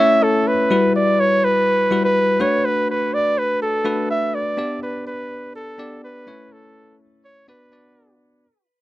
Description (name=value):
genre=pop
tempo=124 BPM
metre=4/4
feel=straight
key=B minor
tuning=A4 = 440 Hz
part: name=warm flugelhorn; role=melody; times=0.0-8.2 s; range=A4 to E5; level=-18 LUFS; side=right 1 dB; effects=digital delay
part: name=bell-like tine electric piano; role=accompaniment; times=0.0-8.5 s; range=G3 to D5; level=-22 LUFS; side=left 3 dB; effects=none
room=moderate booth ambience, RT60 0.2 s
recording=none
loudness=-16 LUFS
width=side -16 dB against mid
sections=0.0-8.4 A section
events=fade-out 0.0-8.4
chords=0.0 A; 0.7 Emadd9; 2.4 D6; 4.6 G; 6.3 A; 7.5 Bm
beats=0.22 | 0.71 1.19 1.68 2.16 | 2.64 3.13 3.61 4.09 | 4.58 5.06 5.55 6.03 | 6.51 7.00 7.48 7.97